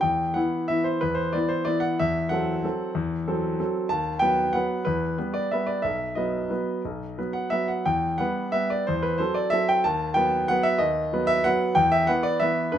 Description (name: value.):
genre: classical, piano waltz.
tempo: 172-199 BPM.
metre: 3/4.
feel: rubato.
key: E minor.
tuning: A4 = 440 Hz.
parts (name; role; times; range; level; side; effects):
warm grand piano; solo; 0.0-12.8 s; B1 to A5; -22 LUFS; equal; none.
room: moderate large studio reverb, RT60 0.9 s.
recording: none.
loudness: -22 LUFS.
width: side -10 dB against mid.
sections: 0.0-12.8 A section.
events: none.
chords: 0.0 Em; 2.0 F#m7b5/E; 3.9 B7/D#; 4.8 Em; 5.8 B; 7.9 Em; 8.9 F#m7b5/E; 9.9 B7/D#; 11.8 E5.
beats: | 0.03 0.36 0.70 | 1.02 1.34 1.67 | 1.99 2.31 2.64 | 2.95 3.26 3.58 | 3.90 4.21 4.53 | 4.85 5.17 5.50 | 5.83 6.16 6.50 | 6.84 7.17 7.52 | 7.86 8.19 8.53 | 8.87 9.19 9.53 | 9.85 10.17 10.49 | 10.81 11.12 11.45 | 11.77 12.08 12.41 | 12.73.